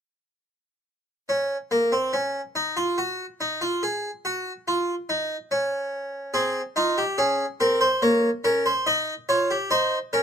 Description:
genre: classical, baroque-style 3-part fugue for harpsichord.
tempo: 71 BPM.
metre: 3/4.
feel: straight.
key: unclear.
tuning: A4 = 439 Hz.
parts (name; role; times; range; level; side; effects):
harpsichord; solo; 1.3-10.2 s; Bb3 to Eb5; -22 LUFS; equal; none.
room: little or no reverb.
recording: close, detailed microphones.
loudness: -22 LUFS.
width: side -7 dB against mid.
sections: 1.3-10.2 A section.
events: none.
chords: 1.3 N.C.; 6.3 Ab/C; 8.0 Bbm; 8.9 Eb7.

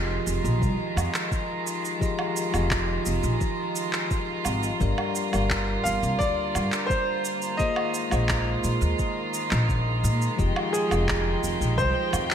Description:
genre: sunset chillout.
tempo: 86 BPM.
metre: 4/4.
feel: straight.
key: F dorian.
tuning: A4 = 438 Hz.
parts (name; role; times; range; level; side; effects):
bell-like tine electric piano; accompaniment; 0.0-12.3 s; F3 to G5; -30 LUFS; moving between left 8 dB and right 5 dB; auto-pan, low-pass filter, digital delay.
rich chamber string section; sustained chords; 0.0-12.3 s; D3 to G5; -31 LUFS; equal; none.
upright bass; bass; 0.0-12.2 s; F1 to Bb2; -26 LUFS; equal; tube saturation.
drifting glass-harmonics texture; texture; 0.0-12.3 s; Bb5; -36 LUFS; right 4 dB; chorus, built-in reverb.
electronic shaker, woodblock and handclaps; drums; 0.3-12.3 s; none; -31 LUFS; right 2 dB; gated reverb.
electronic kick drum; drums; 0.6-11.9 s; none; -29 LUFS; equal; none.
bright grand piano; melody; 5.8-12.3 s; Ab4 to F5; -28 LUFS; equal; digital delay.
room: moderate lush hall reverb, RT60 2.3 s.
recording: bright 1980s-style digital production.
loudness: -23 LUFS.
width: side -8 dB against mid.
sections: 0.0-12.3 A section.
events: none.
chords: 0.0 Fm9; 4.8 Gm7; 7.6 Bb7sus4; 10.4 Fm9.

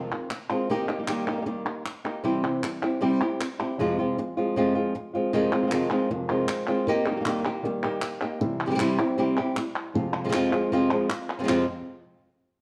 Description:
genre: flamenco.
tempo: 156 BPM.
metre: 4/4.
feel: straight.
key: F minor.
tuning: A4 = 440 Hz.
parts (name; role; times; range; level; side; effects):
flamenco guitar; stabs; 0.0-11.6 s; F2 to G4; -35 LUFS; equal; none.
palmas hand claps; percussion; 0.1-11.6 s; none; -35 LUFS; equal; none.
flamenco guitar; melody; 0.5-11.6 s; F2 to G4; -27 LUFS; equal; none.
room: moderate large studio reverb, RT60 1.1 s.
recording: worn, warbling old tape, cassette tape, warbly pitch drift.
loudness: -26 LUFS.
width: mono.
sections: 0.0-5.3 A section; 5.3-11.5 A section; 11.5-12.6 B section.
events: none.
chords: 0.0 Fm7; 0.7 Eb; 2.2 C; 3.8 Fm; 5.3 Fm7; 6.9 Eb; 8.4 C; 9.9 Fm.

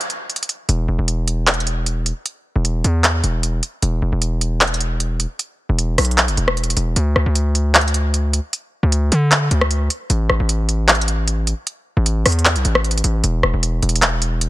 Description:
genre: hip hop, trap.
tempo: 153 BPM.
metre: 4/4.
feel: half-time.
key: unclear.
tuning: A4 = 436 Hz.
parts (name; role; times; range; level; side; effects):
trap drum kit; drums; 0.0-14.5 s; handclaps, hi-hat, rim click; -17 LUFS; equal; vintage 12-bit sampler grit.
distorted 808-style bass; bass; 0.7-14.5 s; E1 to D3; -18 LUFS; equal; distortion.
room: little or no reverb.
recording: dense, heavily limited modern master.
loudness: -16 LUFS.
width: side -17 dB against mid.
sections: 0.0-13.2 A section; 13.2-14.5 B section.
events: break 0.0-0.7.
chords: none.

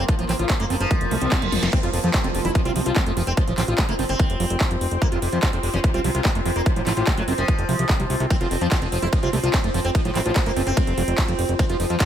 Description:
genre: psychedelic trance.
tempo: 146 BPM.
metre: 4/4.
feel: straight.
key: F major.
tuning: A4 = 440 Hz.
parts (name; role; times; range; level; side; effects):
sitar; melody; 0.0-12.1 s; C3 to E4; -29 LUFS; equal; phaser, sidechain pumping, ping-pong delay.
bubbling stepped-filter texture; sustained chords; 0.0-12.1 s; F3 to C4; -33 LUFS; right 1 dB; chorus, built-in reverb, sidechain pumping.
fat analog bass; bass; 0.0-12.0 s; F1 to F2; -24 LUFS; equal; none.
warbly tape-like pad; texture; 0.0-12.1 s; F4 to C6; -30 LUFS; right 2 dB; chorus, built-in reverb, sidechain pumping.
big-room dance drum kit; drums; 0.1-12.1 s; handclaps, hi-hat, ride cymbal, snare drum, toms; -29 LUFS; right 1 dB; studio reverb.
electronic kick drum; drums; 0.1-12.1 s; none; -22 LUFS; equal; studio reverb.
overdriven acid bass; riff; 0.2-12.0 s; F3 to F4; -28 LUFS; moving between left 3 dB and right 5 dB; distortion, auto-pan, sidechain pumping, digital delay.
reverse cymbal and downlifter; sound effects; 1.1-5.0 s; none; -32 LUFS; right 2 dB; none.
vowel-sweep wobble bass; second line; 8.5-10.9 s; none; barely audible; none; none.
room: digital ambience.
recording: none.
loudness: -19 LUFS.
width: side -10 dB against mid.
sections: 0.0-1.7 A section; 1.7-12.1 B section.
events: reverse cymbal 1.1-1.7; drum fill 1.5; drop 1.7-12.1.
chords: 0.0 F5.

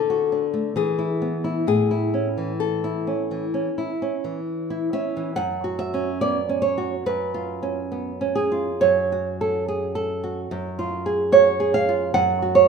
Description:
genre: romantic duo for nylon-string guitar and classical guitar.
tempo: 64-74 BPM.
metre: 4/4.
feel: rubato.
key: A major, F# minor from 5.4 s.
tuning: A4 = 439 Hz.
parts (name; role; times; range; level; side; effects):
nylon-string guitar; melody; 0.0-4.4 s; G#4 to A4; -25 LUFS; left 9 dB; none.
nylon-string guitar; accompaniment; 0.0-12.7 s; F#2 to F#5; -21 LUFS; right 3 dB; none.
room: moderate recital hall reverb, RT60 1.6 s.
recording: minimal, uncompressed stereo recording.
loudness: -21 LUFS.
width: side -5 dB against mid.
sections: 0.0-5.4 A section; 5.4-12.7 B section.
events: none.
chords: 0.0 D; 0.8 E; 1.7 A; 5.4 F#5; 7.1 C#7/F#; 8.8 F#m; 10.5 C#/F#; 12.2 F#5.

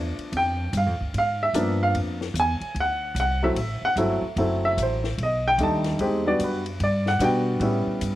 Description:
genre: jazz piano trio.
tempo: 148 BPM.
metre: 4/4.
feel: swing 64% on 8ths.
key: D mixolydian.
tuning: A4 = 441 Hz.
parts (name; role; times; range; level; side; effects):
warm baby grand piano; melody; 0.0-8.2 s; F3 to A5; -23 LUFS; equal; none.
upright bass; bass; 0.0-8.2 s; F#1 to B2; -27 LUFS; equal; none.
compact cocktail drum kit; drums; 0.2-8.1 s; hi-hat, ride cymbal, snare drum; -38 LUFS; left 6 dB; none.
room: light reverb, studio ambience.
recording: 1960s-style stereo.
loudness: -21 LUFS.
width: side -14 dB against mid.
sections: 0.0-8.2 A section.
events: grand piano solo 0.0-8.2.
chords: 0.0 G7; 1.1 G#dim7; 2.8 D7; 4.4 F#m7b5; 5.2 B7alt; 6.0 Em7; 7.6 A7.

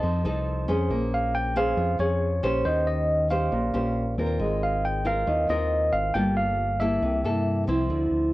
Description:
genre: bossa nova.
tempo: 137 BPM.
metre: 4/4.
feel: straight.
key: unclear.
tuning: A4 = 439 Hz.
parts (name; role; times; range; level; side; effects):
nylon-string guitar; accompaniment; 0.0-8.3 s; Bb2 to C5; -26 LUFS; equal; none.
fingered electric bass; bass; 0.0-8.3 s; G1 to G2; -28 LUFS; equal; none.
tine electric piano; melody; 1.1-7.6 s; C5 to G5; -26 LUFS; equal; none.
room: light reverb.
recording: worn, warbling old tape, cassette tape, warbly pitch drift.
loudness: -22 LUFS.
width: side -17 dB against mid.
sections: 0.0-7.9 A section.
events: none.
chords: 0.0 F7; 0.9 Bbm9; 2.6 Eb13; 4.4 Ab69; 6.1 Gm9; 7.0 C6.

